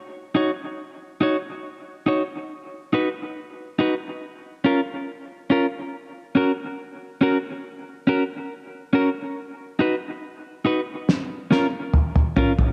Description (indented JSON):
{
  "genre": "dub reggae",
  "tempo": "70 BPM",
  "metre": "4/4",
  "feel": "straight",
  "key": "Eb minor",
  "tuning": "A4 = 440 Hz",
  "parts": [
    { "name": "clean electric guitar", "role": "accompaniment", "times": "0.3-12.5 s", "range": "Db4 to Db5", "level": "-25 LUFS", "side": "equal", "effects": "dub echo" },
    { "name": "cloth-damped thuddy drum kit", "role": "drums", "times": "11.1-12.7 s", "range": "snare drum, toms", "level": "-22 LUFS", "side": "equal", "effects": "none" }
  ],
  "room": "moderate spring reverb, RT60 2.4 s",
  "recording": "dark, warm production",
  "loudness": "-23 LUFS",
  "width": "mono",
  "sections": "0.0-12.7 A section",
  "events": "drum fill 11.1-12.7",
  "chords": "0.0 Ebm7; 2.5 Ebm; 4.2 Db6; 5.9 Dbsus4; 9.4 Ebm; 11.1 Db6"
}